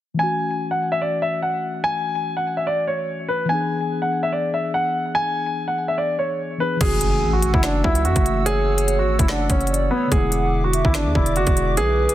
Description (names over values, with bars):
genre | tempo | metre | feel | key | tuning
hip hop, drill | 145 BPM | 4/4 | half-time | F# minor | A4 = 440 Hz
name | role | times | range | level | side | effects
muted felt-like synth keys | accompaniment | 0.1-12.1 s | D3 to G#4 | -28 LUFS | left 4 dB | chorus, low-pass filter
warm baby grand piano | melody | 0.2-12.1 s | B3 to G#5 | -22 LUFS | equal | low-pass filter, ping-pong delay
hollow clarinet-like synth lead | second line | 6.8-12.1 s | B4 to G#5 | -27 LUFS | right 4 dB | chorus, ping-pong delay
dark analog pad | sustained chords | 6.8-12.1 s | A3 to E6 | -30 LUFS | equal | chorus
distorted 808-style bass | bass | 6.8-12.1 s | E1 to F#2 | -22 LUFS | equal | distortion
drill drum kit | drums | 6.8-12.1 s | crash cymbal, finger snaps, hi-hat, kick drum, snare drum | -21 LUFS | equal | soft clipping on snare
impact | sound effects | 6.9-8.5 s | none | -31 LUFS | right 1 dB | none
room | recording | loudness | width
light reverb, digital ambience | dense, heavily limited modern master | -18 LUFS | side -13 dB against mid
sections
0.2-6.8 A section; 6.8-12.1 B section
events
impact 6.8-8.5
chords
0.2 F#m7; 3.5 E7; 6.8 F#m7; 10.1 E7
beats
| 0.19 0.60 1.01 1.43 | 1.84 2.25 2.67 3.08 | 3.50 3.91 4.32 4.74 | 5.15 5.57 5.98 6.39 | 6.81 7.22 7.63 8.05 | 8.46 8.88 9.29 9.70 | 10.12 10.53 10.95 11.36 | 11.77